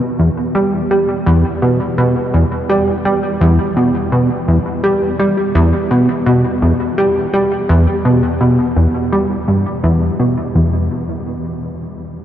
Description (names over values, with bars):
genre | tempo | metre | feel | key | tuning
ambient | 84 BPM | 4/4 | straight | E minor | A4 = 444 Hz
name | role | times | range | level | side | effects
plucky analog bass | solo | 0.2-10.9 s | E2 to G3 | -12 LUFS | equal | lush chorus, tape echo
room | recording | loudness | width
wet huge ambient reverb, RT60 7.9 s | dark, warm production | -12 LUFS | side -11 dB against mid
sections
0.0-10.5 A section; 10.5-12.2 B section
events
none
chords
none